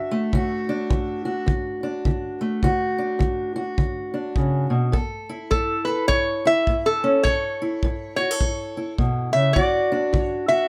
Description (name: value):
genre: acoustic country blues, solo or duo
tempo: 104 BPM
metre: 4/4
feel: swing 61% on 8ths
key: D major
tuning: A4 = 440 Hz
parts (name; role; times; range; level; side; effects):
- lap resonator guitar; melody; 0.0-1.5, 5.5-10.7 s; A4 to E5; -24 LUFS; equal; none
- fingerpicked steel-string acoustic guitar; accompaniment; 0.0-10.7 s; A2 to A4; -26 LUFS; equal; none
- kick drum; drums; 0.3-10.3 s; none; -27 LUFS; equal; none
room: moderate studio reverb, RT60 0.5 s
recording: none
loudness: -23 LUFS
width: mono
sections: 0.0-10.7 A section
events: none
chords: 0.0 D; 4.9 A; 9.6 D